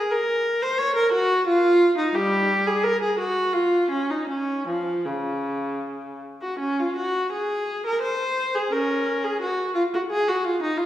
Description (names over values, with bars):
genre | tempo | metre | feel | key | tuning
classical, baroque-style suite movement for unaccompanied viola | 74-91 BPM | 3/4 | rubato | Db major | A4 = 440 Hz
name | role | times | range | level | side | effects
clear viola | solo | 0.0-10.9 s | Db3 to Db5 | -21 LUFS | equal | none
room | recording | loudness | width
wet recital hall reverb, RT60 1.6 s | heard from further back in the room | -21 LUFS | side -12 dB against mid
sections
0.0-6.6 A section; 6.6-10.9 B section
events
none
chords
none